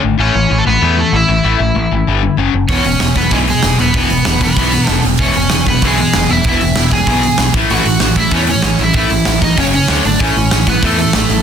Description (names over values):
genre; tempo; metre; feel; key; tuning
punk rock; 192 BPM; 4/4; straight; E major; A4 = 440 Hz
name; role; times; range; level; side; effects
distorted electric guitar; riff; 0.0-11.4 s; E2 to D4; -17 LUFS; left 10 dB; distortion
growling picked electric bass; bass; 0.0-11.4 s; E1 to E2; -17 LUFS; right 1 dB; overdrive
overdriven semi-hollow guitar; melody; 0.2-11.4 s; G#3 to G#5; -16 LUFS; right 1 dB; none
distorted electric guitar; riff; 2.7-11.4 s; E2 to D4; -18 LUFS; right 11 dB; distortion
big rock drum kit; drums; 2.7-11.4 s; hi-hat, kick drum, snare drum; -16 LUFS; right 1 dB; none
room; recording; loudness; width
little or no reverb; dense, heavily limited modern master; -10 LUFS; side -8 dB against mid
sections
0.0-11.4 A section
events
none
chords
0.2 A; 2.1 G5; 2.4 F#5; 2.7 E; 7.5 A5; 9.6 F#5; 9.9 D5; 10.2 A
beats
| 0.19 0.50 0.81 1.13 | 1.44 1.75 2.07 2.38 | 2.69 3.01 3.32 3.63 | 3.94 4.26 4.57 4.88 | 5.20 5.51 5.82 6.14 | 6.45 6.76 7.08 7.39 | 7.70 8.01 8.33 8.64 | 8.95 9.27 9.58 9.89 | 10.20 10.52 10.83 11.14